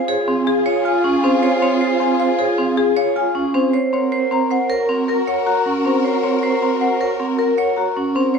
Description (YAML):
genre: classical, minimalist pattern music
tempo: 156 BPM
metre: 6/4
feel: straight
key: Db major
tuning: A4 = 440 Hz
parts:
  - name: marimba with medium mallets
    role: melody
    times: 0.0-8.4 s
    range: Ab4 to Bb5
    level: -21 LUFS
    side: left 9 dB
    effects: none
  - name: mellow French horn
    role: second line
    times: 0.0-8.3 s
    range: F4 to Bb4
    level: -26 LUFS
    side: left 2 dB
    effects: none
  - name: dark studio string section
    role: sustained chords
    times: 0.0-8.3 s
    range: F4 to Bb4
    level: -24 LUFS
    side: left 1 dB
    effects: none
  - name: vibraphone with medium hard mallets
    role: arpeggios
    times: 0.0-8.4 s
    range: C4 to Db5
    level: -18 LUFS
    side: right 4 dB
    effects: none
room: moderate large studio reverb, RT60 1.3 s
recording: dark, warm production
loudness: -15 LUFS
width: side -6 dB against mid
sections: 0.0-8.4 A section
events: none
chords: 0.0 Db; 3.9 Gb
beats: 0.08 0.47 0.85 1.24 | 1.62 2.01 2.39 2.78 3.16 3.55 | 3.93 4.32 4.70 5.08 5.47 5.85 | 6.24 6.62 7.01 7.39 7.78 8.16